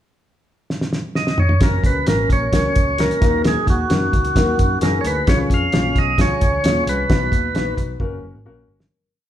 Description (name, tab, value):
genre	uptempo 1960s-style soul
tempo	131 BPM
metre	4/4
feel	straight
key	F# major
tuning	A4 = 443 Hz
part	cloth-damped thuddy drum kit	drums	0.7-8.9 s	hi-hat, kick drum, snare drum, toms	-18 LUFS	equal	none
part	tonewheel organ	melody	1.2-7.7 s	F#4 to E#5	-21 LUFS	right 2 dB	overdrive, slow rotary speaker
part	warm upright piano	accompaniment	1.6-8.8 s	B2 to C#5	-24 LUFS	left 4 dB	none
part	vintage muted picked electric bass	bass	1.6-8.8 s	F#1 to F#2	-24 LUFS	equal	none
room	wet large studio reverb, RT60 1.1 s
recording	band playing live in one room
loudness	-15 LUFS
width	side -11 dB against mid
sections	0.0-1.6 pickup bar; 1.6-8.9 A section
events	drum fill 0.7-1.6, 8.0-8.9; fade-out 7.1-8.9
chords	0.0 N.C.; 1.6 F#; 3.2 D#m; 5.3 C#; 7.1 B; 8.0 F#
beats	0.23 0.69 1.15 | 1.61 2.07 2.53 2.99 | 3.45 3.90 4.36 4.82 | 5.28 5.73 6.18 6.64 | 7.09 7.55 8.00 8.46